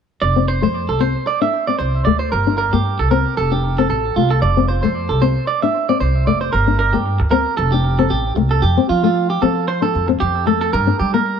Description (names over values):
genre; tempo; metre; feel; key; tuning
highlife; 114 BPM; 4/4; swing 55% on 16ths; F major; A4 = 442 Hz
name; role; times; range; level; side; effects
clean electric guitar; arpeggios; 0.2-11.4 s; F4 to E5; -19 LUFS; right 6 dB; tape echo
upright bass; bass; 0.2-11.4 s; F1 to G3; -18 LUFS; right 1 dB; none
nylon-string guitar; accompaniment; 0.4-11.4 s; A3 to D4; -20 LUFS; left 12 dB; none
room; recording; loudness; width
small room reverb; dry, close 1970s-style studio recording; -14 LUFS; side -7 dB against mid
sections
0.2-8.6 A section; 8.6-11.4 B section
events
none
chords
0.2 F; 2.3 Gm; 3.4 Dm/F; 4.4 F; 6.5 Gm; 7.6 Dm/F; 10.7 Gm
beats
| 0.22 0.74 1.27 1.79 | 2.32 2.85 3.38 3.90 | 4.43 4.96 5.48 6.01 | 6.54 7.06 7.59 8.11 | 8.64 9.16 9.69 10.21 | 10.74 11.26